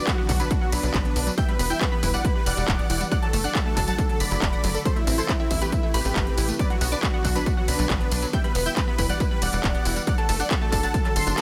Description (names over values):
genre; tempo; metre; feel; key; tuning
uplifting trance; 138 BPM; 4/4; straight; unclear; A4 = 440 Hz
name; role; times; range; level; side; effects
dense compressed supersaw; melody; 0.0-11.4 s; D4 to C6; -31 LUFS; equal; sidechain pumping, tape echo
unison pluck; second line; 0.0-11.4 s; E5 to C7; -36 LUFS; equal; sidechain pumping, dub echo
lush unison pad; sustained chords; 0.0-11.4 s; C3 to G4; -36 LUFS; equal; chorus, sidechain pumping
analog pluck; arpeggios; 0.1-11.4 s; F#3 to F#5; -36 LUFS; equal; chorus, sidechain pumping, dub echo
electronic kick drum; drums; 0.1-11.0 s; none; -27 LUFS; equal; overdrive, small room ambience
techno drum kit; drums; 0.1-11.4 s; handclaps, hi-hat, ride cymbal, snare drum, tambourine; -32 LUFS; equal; overdrive, sidechain pumping on hats, small room ambience, sidechain pumping on perc, sidechain pumping on cymbals
tight sequencer bass; bass; 0.3-11.3 s; D1 to B1; -29 LUFS; equal; sidechain pumping
room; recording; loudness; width
little or no reverb; none; -23 LUFS; mono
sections
0.0-11.4 A section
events
none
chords
0.0 Bm; 1.4 Em; 3.1 D/F#; 4.9 Am; 6.6 Bm; 8.3 Em; 10.1 D/F#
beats
0.07 0.51 0.94 | 1.38 1.81 2.25 2.68 | 3.12 3.55 3.98 4.42 | 4.86 5.29 5.72 6.16 | 6.59 7.03 7.46 7.90 | 8.33 8.77 9.20 9.64 | 10.07 10.51 10.94 11.38